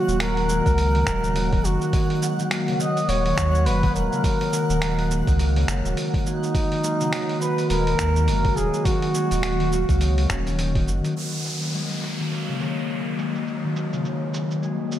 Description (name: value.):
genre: organic downtempo.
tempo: 104 BPM.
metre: 4/4.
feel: swing 59% on 16ths.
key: Eb minor.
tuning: A4 = 438 Hz.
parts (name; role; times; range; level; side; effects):
trumpet with bucket mute; melody; 0.0-10.6 s; Eb4 to Eb5; -26 LUFS; right 1 dB; diffuse ambient delay.
warbly tape-like pad; sustained chords; 0.0-15.0 s; Eb3 to Gb4; -28 LUFS; equal; chorus, built-in reverb, sidechain pumping.
concert harp; arpeggios; 0.0-15.0 s; Db3 to Db4; -27 LUFS; left 2 dB; low-pass filter, diffuse ambient delay.
twinkling granular texture; texture; 0.0-11.2 s; Gb5; -36 LUFS; right 1 dB; built-in reverb, wide subtle chorus.
warm sub bass; bass; 0.1-11.0 s; Eb1 to Eb2; -23 LUFS; equal; tube saturation.
dusty soul sampler-style drum kit; drums; 0.1-15.0 s; cabasa, finger snaps, hi-hat; -31 LUFS; right 1 dB; overdrive, low-pass filter on hats, low-pass filter on cymbals, low-pass filter on perc, low-pass filter on snare, low-pass filter on room.
electronic kick drum; drums; 0.7-10.8 s; none; -24 LUFS; equal; overdrive.
downlifter; sound effects; 11.2-15.0 s; none; -32 LUFS; equal; none.
room: wet lush hall reverb, RT60 2.1 s.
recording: dreamy mix soaked in reverb.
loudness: -20 LUFS.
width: side -12 dB against mid.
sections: 0.0-11.2 A section; 11.2-15.0 B section.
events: filter sweep on drum 11.2-15.0; filter sweep on harp 11.2-15.0.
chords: 0.0 Ebm.